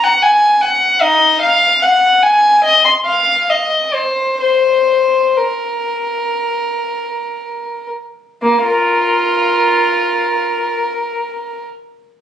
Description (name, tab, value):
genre	classical, baroque-style suite movement for unaccompanied violin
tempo	56-77 BPM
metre	4/4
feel	rubato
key	unclear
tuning	A4 = 443 Hz
part	dark violin	solo	0.0-11.7 s	Bb3 to C6	-12 LUFS	left 1 dB	none
room	moderate large studio reverb, RT60 1.0 s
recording	recorded on a phone in the room, studio ambience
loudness	-11 LUFS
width	side -9 dB against mid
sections	0.0-8.4 A section; 8.4-12.2 B section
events	slowing down 0.0-8.4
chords	none